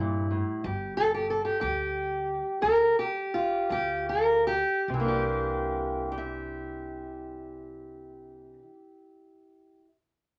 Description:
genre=acoustic country blues, solo or duo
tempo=49-64 BPM (dotted quarters)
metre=12/8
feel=straight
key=C mixolydian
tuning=A4 = 436 Hz
part: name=fingerpicked steel-string acoustic guitar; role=melody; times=0.0-9.9 s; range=G2 to E5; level=-29 LUFS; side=equal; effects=none
part: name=upright bass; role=bass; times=0.0-8.5 s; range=G1 to G2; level=-39 LUFS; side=equal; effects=none
room=moderate small room ambience, RT60 0.5 s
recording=none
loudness=-28 LUFS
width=mono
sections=0.0-4.9 A section; 4.9-9.8 B section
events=slowing down 0.0-4.9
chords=0.0 C7 (rootless); 0.6 G5; 4.9 C9

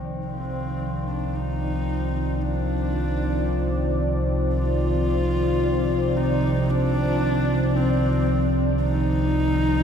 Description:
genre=dark ambient drone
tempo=free time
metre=none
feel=none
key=C minor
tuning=A4 = 440 Hz
part: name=sweeping resonant pad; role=sustained chords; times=0.0-9.8 s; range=Eb3 to D5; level=-26 LUFS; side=equal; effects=chorus, shimmer reverb
part: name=tubular bells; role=arpeggios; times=0.0-9.8 s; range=C4 to F4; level=-39 LUFS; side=left 4 dB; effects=shimmer reverb, diffuse ambient delay
part: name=analog drone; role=drone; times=0.0-9.8 s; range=C2 to C3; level=-24 LUFS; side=equal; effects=wide subtle chorus
part: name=dark horsehead fiddle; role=melody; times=0.3-9.8 s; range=C4 to F4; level=-28 LUFS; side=left 2 dB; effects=shimmer reverb, diffuse ambient delay
room=wet cathedral reverb, RT60 5.6 s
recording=none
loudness=-21 LUFS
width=side -8 dB against mid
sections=0.0-9.8 A section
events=fade-in on analog synth pad 0.0-9.8; fade-in on tubular bells 0.0-9.8; fade-in on horsehead fiddle 0.0-9.8; filter sweep on synth drone 0.0-9.8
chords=0.0 Cmadd9

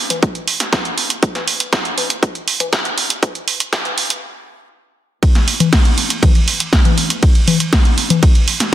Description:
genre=techno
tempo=120 BPM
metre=4/4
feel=straight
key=none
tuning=none
part: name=punchy analog drum machine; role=drums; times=0.1-8.7 s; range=congas, hi-hat, ride cymbal, snare drum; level=-16 LUFS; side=equal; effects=high-pass filter on hats, high-pass filter on snare, high-pass filter on perc, high-pass filter on cymbals, high-pass filter on room
part: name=electronic kick drum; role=drums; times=0.2-8.3 s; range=none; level=-14 LUFS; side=equal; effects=overdrive
room=light reverb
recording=dense, heavily limited modern master, high-pass filter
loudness=-13 LUFS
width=side -12 dB against mid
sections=0.0-5.2 A section; 5.2-8.7 B section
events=build-up 0.0-5.2; stop 4.2-5.2; drop 5.2-8.7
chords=none

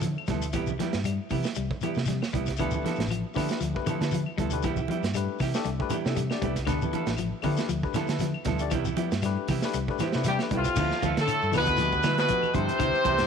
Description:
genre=afrobeat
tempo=118 BPM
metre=4/4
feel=swing 56% on 16ths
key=D dorian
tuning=A4 = 440 Hz
part: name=clean electric guitar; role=arpeggios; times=0.0-13.2 s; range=D3 to G3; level=-34 LUFS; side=left 10 dB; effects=none
part: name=semi-hollow electric guitar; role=stabs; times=0.0-13.3 s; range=F3 to A4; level=-34 LUFS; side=right 9 dB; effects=none
part: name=hollow-body short-scale fingered electric bass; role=bass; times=0.0-13.3 s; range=A1 to D3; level=-31 LUFS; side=equal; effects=none
part: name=crunchy breakbeat drum kit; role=drums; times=0.0-13.3 s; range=crash cymbal, hi-hat, kick drum, snare drum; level=-33 LUFS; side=right 4 dB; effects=none
part: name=congas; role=percussion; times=0.0-13.2 s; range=none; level=-36 LUFS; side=right 8 dB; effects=none
part: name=shekere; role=percussion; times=0.0-13.3 s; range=none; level=-38 LUFS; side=left 6 dB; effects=none
part: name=claves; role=percussion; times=0.2-12.9 s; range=none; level=-44 LUFS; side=left 13 dB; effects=none
part: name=barky tine electric piano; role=accompaniment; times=2.6-12.8 s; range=A3 to G5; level=-35 LUFS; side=left 12 dB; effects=overdrive
part: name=bright horn section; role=melody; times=10.3-13.3 s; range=F4 to C5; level=-25 LUFS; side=equal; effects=none
part: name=brilliant bass trombone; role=second line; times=10.3-13.3 s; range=F2 to C3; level=-33 LUFS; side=left 10 dB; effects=none
part: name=warm trombone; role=second line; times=10.3-13.3 s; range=F3 to C4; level=-37 LUFS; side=right 13 dB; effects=none
room=light reverb, studio reverb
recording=1960s-style stereo with parts hard left and right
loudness=-25 LUFS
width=side -6 dB against mid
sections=0.0-10.8 A section; 10.8-13.3 B section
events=tine electric piano fill 9.7-10.8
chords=0.0 Dm69; 0.5 Cmaj7; 2.6 Dm69; 4.6 Cmaj7; 6.7 Dm69; 8.7 Cmaj7; 10.8 Dm69

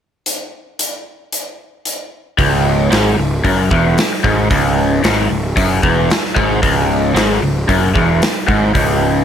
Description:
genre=classic rock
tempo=113 BPM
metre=4/4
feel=straight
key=C# minor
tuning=A4 = 442 Hz
part: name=big rock drum kit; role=drums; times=0.3-8.9 s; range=hi-hat, kick drum, snare drum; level=-18 LUFS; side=equal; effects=none
part: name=overdriven electric guitar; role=riff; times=2.4-9.2 s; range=C#2 to G#2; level=-16 LUFS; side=left 6 dB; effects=phaser
part: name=overdriven semi-hollow guitar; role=riff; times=2.4-9.2 s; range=C#2 to G#2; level=-18 LUFS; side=right 11 dB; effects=none
part: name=fuzz picked electric bass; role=bass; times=2.4-9.2 s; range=C#1 to G#1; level=-19 LUFS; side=equal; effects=overdrive
room=light reverb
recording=none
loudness=-12 LUFS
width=side -8 dB against mid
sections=0.3-2.4 A section; 2.4-9.2 B section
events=none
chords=0.3 N.C.; 2.4 C#m

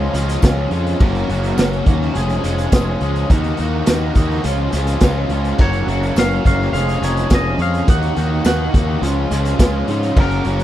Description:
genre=indie rock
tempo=105 BPM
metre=4/4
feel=straight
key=unclear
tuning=A4 = 440 Hz
part: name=overdriven electric guitar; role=riff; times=0.0-10.6 s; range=Gb2 to Ab4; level=-23 LUFS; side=left 7 dB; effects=none
part: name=overdriven electric guitar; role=riff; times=0.0-10.6 s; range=Db3 to Ab4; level=-25 LUFS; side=right 11 dB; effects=ensemble chorus, tape echo
part: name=fuzz picked electric bass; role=bass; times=0.0-10.6 s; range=F1 to Ab2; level=-19 LUFS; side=equal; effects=overdrive
part: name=raw garage drum kit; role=drums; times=0.1-10.6 s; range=crash cymbal, hi-hat, kick drum, snare drum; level=-17 LUFS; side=equal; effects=none
part: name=tambourine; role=percussion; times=0.4-9.7 s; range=none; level=-38 LUFS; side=left 16 dB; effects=none
part: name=twangy electric guitar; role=melody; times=5.6-10.6 s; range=Bb4 to Gb5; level=-25 LUFS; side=equal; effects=wide subtle chorus, tape echo
part: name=delicate synth tine bell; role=second line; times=5.6-10.6 s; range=Gb5 to Eb6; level=-36 LUFS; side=left 6 dB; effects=none
room=little or no reverb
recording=none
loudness=-14 LUFS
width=side -12 dB against mid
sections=0.0-10.6 A section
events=none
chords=0.0 Db; 1.0 Gb; 2.1 Db/F; 3.3 Ebm; 4.4 Db; 5.6 Gb; 6.7 Db/F; 7.9 Ebm; 9.0 Db

